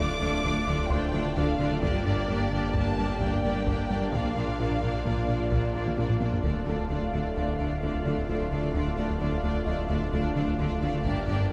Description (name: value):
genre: cinematic, hybrid orchestral and electronic film score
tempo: 130 BPM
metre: 5/4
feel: straight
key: D minor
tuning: A4 = 439 Hz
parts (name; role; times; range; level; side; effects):
- warm symphonic violin section; melody; 0.0-6.2 s; D5 to D6; -38 LUFS; equal; none
- clear symphonic violin section; second line; 0.0-11.5 s; F4 to D5; -40 LUFS; equal; none
- clear symphonic viola section; accompaniment; 0.0-11.5 s; A3 to D4; -36 LUFS; equal; none
- phased analog pad; sustained chords; 0.0-11.5 s; D3 to F5; -36 LUFS; equal; phaser, chorus
- rubbery square bass; riff; 0.0-11.5 s; D2 to Bb3; -35 LUFS; equal; none
- clear symphonic double bass section; bass; 0.0-11.4 s; G1 to D2; -37 LUFS; equal; none
- detuned saw bass; bass; 0.0-11.5 s; D1 to Bb1; -37 LUFS; equal; none
- rich symphonic cello section; bass; 0.0-11.4 s; G2 to D3; -37 LUFS; equal; none
- felt-muted upright piano; texture; 0.0-11.1 s; D4 to D6; -45 LUFS; equal; none
- taiko ensemble; drums; 0.4-7.3, 11.1-11.5 s; none; -36 LUFS; equal; none
room: wet scoring stage reverb, RT60 1.9 s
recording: none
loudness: -28 LUFS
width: mono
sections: 0.0-6.4 A section; 6.4-11.5 B section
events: drum fill 5.9-6.4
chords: 0.0 Dm; 1.8 Gm; 4.1 Bb; 6.4 Dm